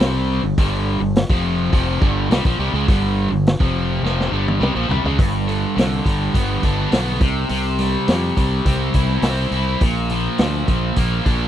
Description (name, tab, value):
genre	classic rock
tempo	104 BPM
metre	4/4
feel	straight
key	unclear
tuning	A4 = 440 Hz
part	distorted electric guitar	riff	0.0-11.5 s	F2 to E4	-20 LUFS	equal	distortion
part	growling fingered electric bass	bass	0.0-11.5 s	F1 to F2	-22 LUFS	equal	overdrive
part	vintage drum kit	drums	0.0-11.4 s	hi-hat, kick drum, snare drum, toms	-18 LUFS	equal	none
room	little or no reverb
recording	dry, close 1970s-style studio recording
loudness	-16 LUFS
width	side -11 dB against mid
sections	0.0-5.2 A section; 5.2-11.5 B section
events	drum fill 4.0-5.2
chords	0.4 G5; 5.2 G; 7.2 C; 9.8 Bb